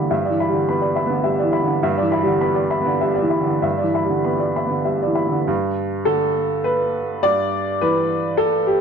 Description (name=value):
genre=neoclassical minimalist piano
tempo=102 BPM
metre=3/4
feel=rubato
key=G major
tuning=A4 = 440 Hz
part: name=clear upright piano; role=solo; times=0.0-8.8 s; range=G2 to B5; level=-17 LUFS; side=equal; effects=none
room=moderate studio reverb, RT60 0.6 s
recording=worn, warbling old tape, cassette tape, warbly pitch drift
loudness=-17 LUFS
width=side -6 dB against mid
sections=0.0-5.5 A section; 5.5-8.8 B section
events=none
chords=0.0 G6